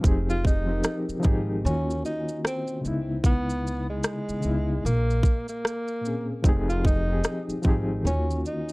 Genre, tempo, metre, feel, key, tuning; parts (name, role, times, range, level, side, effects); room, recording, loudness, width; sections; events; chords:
lo-fi hip hop; 75 BPM; 4/4; swing 59% on 16ths; F minor; A4 = 440 Hz
reed electric piano; accompaniment; 0.0-8.7 s; Bb2 to Bb4; -29 LUFS; left 1 dB; fast tremolo, low-pass filter
upright bass; bass; 0.0-8.4 s; F1 to Eb2; -28 LUFS; equal
organic electronic drum kit; drums; 0.0-8.7 s; hi-hat, kick drum, rim click, shaker; -23 LUFS; equal
breathy tenor saxophone; melody; 0.3-8.7 s; Ab3 to F4; -31 LUFS; equal; low-pass filter, tape echo
light reverb; dark, warm production; -23 LUFS; side -24 dB against mid
0.0-8.7 A section
0.0 Fm7; 1.6 Ebm7; 2.8 Dbm7; 4.8 Bbm7; 6.4 Fm7; 8.0 Ebm7